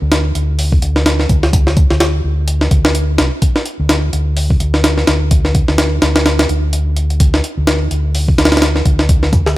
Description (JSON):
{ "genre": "breakbeat, breaks", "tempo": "127 BPM", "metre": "4/4", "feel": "swing 58% on 16ths", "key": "unclear", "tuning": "A4 = 440 Hz", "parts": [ { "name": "fingered electric bass", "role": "bass", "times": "0.0-9.6 s", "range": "C2 to D2", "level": "-15 LUFS", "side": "equal", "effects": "none" }, { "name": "breakbeat sampler-style drum kit", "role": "drums", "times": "0.1-9.6 s", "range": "hi-hat, kick drum, snare drum", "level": "-13 LUFS", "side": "equal", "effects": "none" } ], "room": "little or no reverb", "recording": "none", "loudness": "-11 LUFS", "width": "side -16 dB against mid", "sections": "0.0-9.6 A section", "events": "none", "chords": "none" }